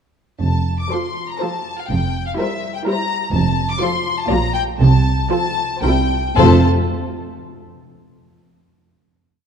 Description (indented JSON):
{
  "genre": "quick classical-period movement for symphony orchestra",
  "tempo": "109-126 BPM",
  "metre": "3/4",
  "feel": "rubato",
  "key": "F major",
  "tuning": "A4 = 440 Hz",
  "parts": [
    { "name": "rich chamber violin section", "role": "melody", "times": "0.4-6.7 s", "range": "E5 to D6", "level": "-23 LUFS", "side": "left 5 dB", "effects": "none" },
    { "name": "rich studio double bass section", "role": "bass", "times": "0.4-6.7 s", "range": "F1 to C2", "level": "-19 LUFS", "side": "right 3 dB", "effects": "none" },
    { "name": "warm chamber cello section", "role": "bass", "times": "0.4-6.7 s", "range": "F2 to C3", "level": "-20 LUFS", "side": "right 2 dB", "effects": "none" },
    { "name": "timpani", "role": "percussion", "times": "0.4-4.0, 6.4-6.6 s", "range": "F2", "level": "-22 LUFS", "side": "left 2 dB", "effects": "none" },
    { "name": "rich chamber violin section", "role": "second line", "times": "0.9-6.7 s", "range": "F4 to D5", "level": "-24 LUFS", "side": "left 4 dB", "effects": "none" },
    { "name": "rich chamber viola section", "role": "accompaniment", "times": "0.9-6.7 s", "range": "F3 to F4", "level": "-23 LUFS", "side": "equal", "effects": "none" }
  ],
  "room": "moderate concert hall reverb, RT60 2.2 s",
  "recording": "dark, warm production",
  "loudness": "-15 LUFS",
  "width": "side -7 dB against mid",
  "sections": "0.4-6.4 theme; 6.4-8.0 final chord",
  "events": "slowing down 2.6-6.4",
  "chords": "0.4 F; 1.9 C7/F; 3.3 F; 4.3 Bb; 4.8 F/C; 5.8 C7; 6.4 F"
}